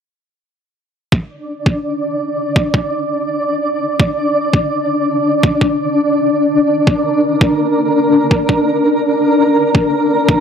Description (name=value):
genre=half-time drum and bass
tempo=167 BPM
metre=4/4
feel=swing 55% on 16ths, half-time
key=G minor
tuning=A4 = 439 Hz
part: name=electronic kick drum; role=drums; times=1.1-10.4 s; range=none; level=-13 LUFS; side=equal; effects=high-pass filter on kick
part: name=flickering grainy texture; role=texture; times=1.5-10.4 s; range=D4 to D5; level=-13 LUFS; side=equal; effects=built-in reverb
room=moderate lush hall reverb, RT60 2.0 s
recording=dark, warm production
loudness=-12 LUFS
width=side -7 dB against mid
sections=1.1-10.4 A section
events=none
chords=1.1 Gm (rootless)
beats=| 1.12 1.48 1.84 2.20 | 2.56 2.92 3.28 3.64 | 4.00 4.36 4.72 5.08 | 5.43 5.79 6.15 6.51 | 6.87 7.23 7.59 7.95 | 8.31 8.67 9.03 9.39 | 9.75 10.11